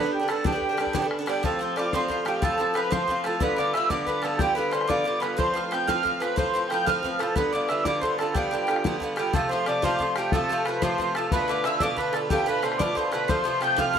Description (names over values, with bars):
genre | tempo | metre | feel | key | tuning
celtic folk, Celtic jig | 122 BPM (dotted quarters) | 6/8 | straight | unclear | A4 = 441 Hz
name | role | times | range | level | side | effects
mellow accordion | melody | 0.0-14.0 s | G4 to G5 | -27 LUFS | right 2 dB | plate reverb
mellow hollow mid whistle | second line | 0.0-14.0 s | F5 to G6 | -32 LUFS | left 5 dB | none
Irish bouzouki | accompaniment | 0.0-14.0 s | G2 to F4 | -27 LUFS | right 1 dB | none
bodhran | percussion | 0.3-14.0 s | none | -30 LUFS | left 3 dB | none
concert harp | second line | 1.3-14.0 s | G4 to G5 | -33 LUFS | equal | none
room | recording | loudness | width
moderate studio reverb, RT60 0.5 s | none | -22 LUFS | side -8 dB against mid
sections
0.0-1.4 A section; 1.4-9.3 B section; 9.3-14.0 B section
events
none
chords
0.0 G; 1.4 F; 3.4 G7; 5.4 F; 7.4 G7; 9.3 F; 11.3 Bm7b5; 13.3 F